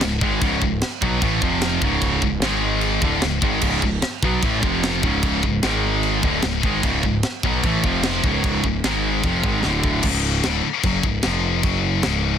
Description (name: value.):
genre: heavy metal.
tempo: 150 BPM.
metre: 4/4.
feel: straight.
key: unclear.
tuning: A4 = 440 Hz.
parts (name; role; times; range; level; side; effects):
crunchy overdriven guitar; riff; 0.0-12.4 s; C#2 to B3; -25 LUFS; equal; none.
heavy high-gain guitar; riff; 0.0-12.4 s; C#2 to B3; -24 LUFS; left 13 dB; distortion.
high-gain distorted guitar; riff; 0.0-10.1 s; C#2 to B3; -24 LUFS; right 10 dB; distortion.
growling picked electric bass; bass; 0.0-12.4 s; C#1 to B1; -26 LUFS; equal; overdrive.
tight metal drum kit; drums; 0.0-12.1 s; china cymbal, crash cymbal, kick drum, snare drum; -24 LUFS; equal; none.
room: little or no reverb.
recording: dense, heavily limited modern master.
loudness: -18 LUFS.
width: side -8 dB against mid.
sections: 0.0-10.0 A section; 10.0-12.4 B section.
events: drum fill 9.6-10.0.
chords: 0.0 C#5; 1.4 F5; 1.8 C#5; 2.4 G#5; 3.0 C#5; 4.6 F5; 5.0 C#5; 5.6 G#5; 6.2 C#5; 7.8 F5; 8.2 C#5; 8.8 G#5; 9.2 Fm7; 9.6 D5; 10.0 C#5; 11.2 F5; 11.6 F#5.